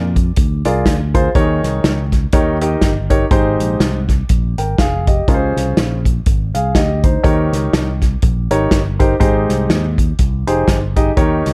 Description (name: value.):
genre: uptempo gospel.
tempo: 122 BPM.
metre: 4/4.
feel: swing 58% on 8ths.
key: Ab major.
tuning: A4 = 440 Hz.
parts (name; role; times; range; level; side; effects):
warm baby grand piano; accompaniment; 0.0-11.5 s; Ab2 to G5; -20 LUFS; equal; none.
fingered electric bass; bass; 0.0-11.5 s; F1 to F2; -21 LUFS; equal; none.
natural country drum kit; drums; 0.2-11.5 s; hi-hat, kick drum, snare drum; -18 LUFS; equal; none.
room: light reverb, studio reverb.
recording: dark, warm production.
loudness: -15 LUFS.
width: mono.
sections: 0.0-11.5 A section.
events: none.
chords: 0.0 Bb7; 1.3 Eb7sus4; 2.3 Eb7; 3.3 Abmaj7; 5.3 Dbmaj7; 7.2 Eb7; 9.2 Abmaj7.